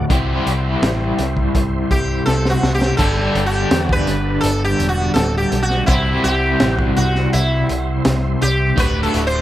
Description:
psychedelic rock; 83 BPM; 4/4; straight; A4 = 439 Hz
tonewheel organ; sustained chords; 0.0-9.4 s; G3 to D6; -32 LUFS; right 4 dB; chorus vibrato, fast rotary speaker
crunchy overdriven guitar; riff; 0.0-9.4 s; D2 to C5; -20 LUFS; left 1 dB; tremolo, analog delay
picked electric bass; bass; 0.0-9.4 s; D1 to E2; -21 LUFS; equal
crunchy breakbeat drum kit; drums; 0.1-9.3 s; crash cymbal, hi-hat, kick drum, snare drum; -20 LUFS; equal; analog delay
sitar; melody; 1.9-9.4 s; E4 to C5; -20 LUFS; equal; analog delay
studio ambience; echo-heavy mix; -15 LUFS; side -13 dB against mid
0.0-9.4 A section
sitar solo 0.0-9.4; drum fill 2.3-3.0
0.1 C; 3.0 Gsus2; 5.9 C; 8.8 D
| 0.10 0.82 1.54 2.27 | 2.99 3.72 4.44 5.16 | 5.89 6.61 7.33 8.06 | 8.78

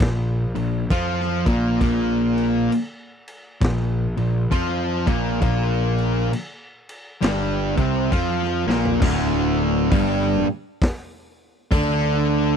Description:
stoner and doom metal; 67 BPM; 4/4; swing 62% on 8ths; A4 = 440 Hz
fuzz guitar; riff; 0.0-12.6 s; D2 to F4; -20 LUFS; equal; distortion
fuzz picked electric bass; bass; 0.0-12.6 s; D1 to F2; -25 LUFS; equal; overdrive
raw garage drum kit; drums; 0.0-12.0 s; crash cymbal, hi-hat, kick drum, snare drum, toms; -23 LUFS; equal
studio reverb; dry, close 1970s-style studio recording; -19 LUFS; side -7 dB against mid
0.0-9.0 A section; 9.0-12.6 B section
drum fill 8.6-9.0
0.0 Bb5; 9.0 Dsus4
0.00 0.90 | 1.81 2.71 3.61 4.51 | 5.42 6.32 7.22 8.12 | 9.02 9.92 10.82 11.72

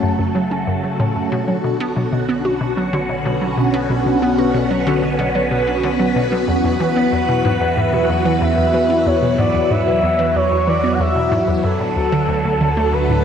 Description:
ambient, sequencer-driven space music; 93 BPM; 4/4; straight; A4 = 440 Hz
phased string machine; sustained chords; 0.0-13.2 s; Db3 to B4; -18 LUFS; equal; ensemble chorus, phaser, shimmer reverb
hollow square pluck; riff; 0.0-13.2 s; D2 to F#4; -20 LUFS; equal; chorus, tape echo
analog drone; bass; 0.0-13.2 s; F#1 to E2; -27 LUFS; equal; chorus
expressive synth lead; melody; 6.8-13.2 s; A4 to F#5; -19 LUFS; equal; wide subtle chorus, shimmer reverb, tape echo
wet plate reverb, RT60 3.1 s; dreamy mix soaked in reverb; -15 LUFS; side -8 dB against mid
0.0-13.2 A section
fade-in on synth drone 0.0-13.2
0.0 F#m; 1.3 Bmadd9; 6.5 Esus2; 11.6 D
0.03 0.67 | 1.32 1.96 2.61 3.25 | 3.90 4.54 5.19 5.83 | 6.48 7.12 7.77 8.41 | 9.06 9.71 10.35 11.00 | 11.64 12.29 12.93

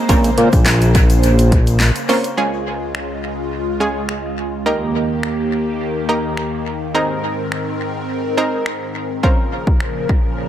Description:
dance-pop; 105 BPM; 4/4; straight; A4 = 440 Hz
lush unison pad; sustained chords; 0.0-10.5 s; Db2 to C5; -22 LUFS; equal; chorus, phaser, sidechain pumping
analog pluck; accompaniment; 0.1-10.0 s; Ab3 to C5; -21 LUFS; right 1 dB; chorus, sidechain pumping, dub echo
fat analog bass; bass; 0.1-1.9 s; Bb1 to Bb2; -13 LUFS; equal; sidechain pumping
punchy analog drum machine; drums; 0.1-10.2 s; finger snaps, handclaps, hi-hat, kick drum, snare drum; -18 LUFS; equal; dub echo
tube shaker; percussion; 0.1-2.4 s; -34 LUFS; left 8 dB; dub echo
moderate spring reverb, RT60 1.9 s; echo-heavy mix; -15 LUFS; side -11 dB against mid
0.0-2.4 A section; 2.4-10.5 B section
0.1 Bbmadd9; 2.4 Db; 4.7 Eb; 6.9 Abadd9; 9.2 Bbmadd9
| 0.09 0.66 1.24 1.81 | 2.38 2.95 3.52 4.09 | 4.66 5.24 5.81 6.38 | 6.95 7.52 8.09 8.66 | 9.23 9.81 10.38

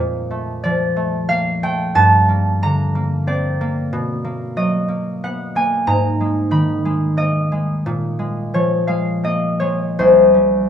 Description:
classical, solo harp piece; 91 BPM; 3/4; rubato; A4 = 435 Hz
concert harp; solo; 0.0-10.7 s; C2 to Cb6; -15 LUFS; equal
moderate stone room reverb, RT60 1.0 s; minimal, uncompressed stereo recording; -15 LUFS; side -8 dB against mid
0.0-10.7 A section
0.0 Bbmaj9; 2.0 Gm9; 3.9 Bmaj7; 5.9 Abm9; 7.9 Bbm7; 10.0 C5
0.64 1.29 | 1.95 2.61 3.27 | 3.92 4.57 5.22 | 5.88 6.53 7.19 | 7.86 8.55 9.24 | 9.98

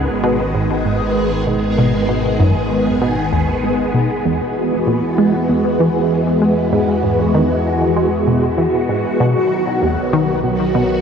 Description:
ambient, sequencer-driven space music; 97 BPM; 4/4; straight; A4 = 443 Hz
phased string machine; sustained chords; 0.0-11.0 s; D#3 to G#4; -16 LUFS; equal; ensemble chorus, phaser, shimmer reverb
tight sequenced synth; riff; 0.0-10.8 s; D#2 to G#3; -18 LUFS; equal; chorus, phaser, ping-pong delay, shimmer reverb
analog drone; bass; 0.1-11.0 s; G#1 to E2; -25 LUFS; equal; chorus
wet huge ambient reverb, RT60 9.4 s; worn, warbling old tape, cassette tape, warbly pitch drift; -14 LUFS; side -7 dB against mid
0.0-11.0 A section
0.0 G#m; 4.3 Eadd9; 9.2 B
0.54 1.16 | 1.78 2.40 3.02 3.64 | 4.25 4.87 5.49 6.11 | 6.73 7.35 7.97 8.59 | 9.20 9.82 10.44

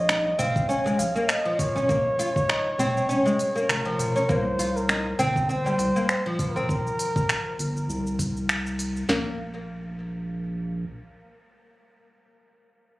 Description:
organic downtempo; 100 BPM; 4/4; swing 56% on 16ths; A4 = 436 Hz
trumpet with bucket mute; melody; 0.0-8.2 s; Bb4 to Ab5; -27 LUFS; equal; digital delay
round analog bass; bass; 0.0-10.9 s; F1 to C2; -30 LUFS; equal
oud; arpeggios; 0.1-9.4 s; F3 to F4; -27 LUFS; equal; digital delay
afro-pop drum kit; drums; 0.1-9.1 s; cabasa, finger snaps, hi-hat; -28 LUFS; equal
darbuka; percussion; 0.4-6.7 s; -35 LUFS; right 1 dB
afro-pop drum kit; drums; 0.6-9.2 s; kick drum, snare drum, toms; -27 LUFS; equal
light reverb; recorded on a phone in the room, studio reverb, compression; -22 LUFS; side -19 dB against mid
0.0-9.1 A section; 9.1-11.5 B section
band accent 8.5
0.0 Bbm; 4.3 C7(no3); 9.1 N.C.
0.09 0.69 1.29 | 1.89 2.49 3.09 3.69 | 4.29 4.89 5.49 6.09 | 6.69 7.29 7.89 8.49 | 9.09 9.69 10.29

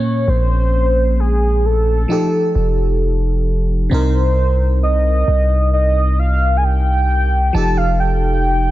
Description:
contemporary R&B; 66 BPM; 4/4; straight; A4 = 436 Hz
warm velvety synth lead; melody; 0.0-8.7 s; Ab4 to A5; -19 LUFS; equal; chorus, digital delay
FM electric piano; accompaniment; 0.0-8.7 s; Bb2 to Bb4; -22 LUFS; equal; chorus
long sustained 808-style bass; bass; 0.3-8.7 s; F1 to C2; -15 LUFS; equal
digital ambience; -13 LUFS; side -15 dB against mid
0.0-3.9 A section; 3.9-8.7 B section
0.0 Bbmadd9; 2.1 F9; 3.9 Cm7; 7.5 F9
| 0.27 1.18 2.09 3.00 | 3.91 4.82 5.73 6.64 | 7.55 8.46

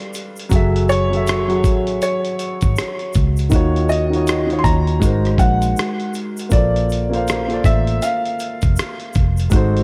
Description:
lo-fi hip hop; 80 BPM; 4/4; swing 61% on 16ths; A4 = 438 Hz
warm upright piano; accompaniment; 0.0-9.8 s; D#3 to F#5; -23 LUFS; equal
dusty soul sampler-style drum kit; drums; 0.0-9.8 s; hi-hat, kick drum, rim click; -22 LUFS; equal
tube shaker; percussion; 0.1-9.7 s; -39 LUFS; equal
vintage muted fingered electric bass; bass; 0.5-9.8 s; E#1 to D#2; -21 LUFS; equal
felt-muted upright piano; melody; 0.9-9.1 s; C#5 to B#5; -25 LUFS; equal; tape echo
moderate lush hall reverb, RT60 2.4 s; dreamy mix soaked in reverb; -18 LUFS; mono
0.0-9.8 A section
0.0 G9; 0.5 F#m9; 3.5 D#m7; 5.0 G#9; 6.5 A#maj9
| 0.52 1.27 2.02 2.77 | 3.52 4.27 5.02 5.77 | 6.52 7.27 8.02 8.77 | 9.52

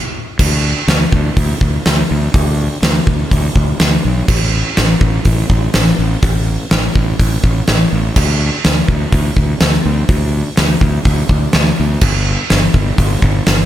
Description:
quiet-loud alternative rock; 124 BPM; 4/4; straight; A4 = 440 Hz
fuzz fingered electric bass; bass; 0.4-13.6 s; G1 to D2; -15 LUFS; equal; overdrive
huge arena drum kit; drums; 0.4-13.6 s; crash cymbal, hi-hat, kick drum, snare drum; -14 LUFS; equal
little or no reverb; -11 LUFS; side -12 dB against mid
0.4-13.7 A section
stop 0.0-0.4
| 0.39 0.88 1.36 1.85 | 2.34 2.82 3.31 3.79 | 4.28 4.77 5.25 5.74 | 6.22 6.70 7.19 7.67 | 8.15 8.64 9.12 9.60 | 10.09 10.57 11.05 11.53 | 12.02 12.50 12.98 13.46

